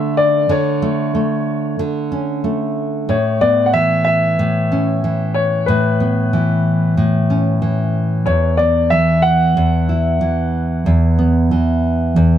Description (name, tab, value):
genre	acoustic pop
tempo	93 BPM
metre	4/4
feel	straight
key	A major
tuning	A4 = 441 Hz
part	warm upright piano	melody	0.0-12.4 s	B4 to F#5	-18 LUFS	left 2 dB	none
part	nylon-string guitar	accompaniment	0.0-12.4 s	E2 to E4	-15 LUFS	equal	none
room	little or no reverb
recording	none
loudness	-14 LUFS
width	side -10 dB against mid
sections	0.0-12.4 A section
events	none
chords	0.0 D5; 3.1 Aadd9; 8.3 Esus2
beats	| 0.50 1.15 1.79 2.44 | 3.09 3.74 4.38 5.03 | 5.68 6.33 6.97 7.62 | 8.27 8.92 9.57 10.21 | 10.86 11.51 12.16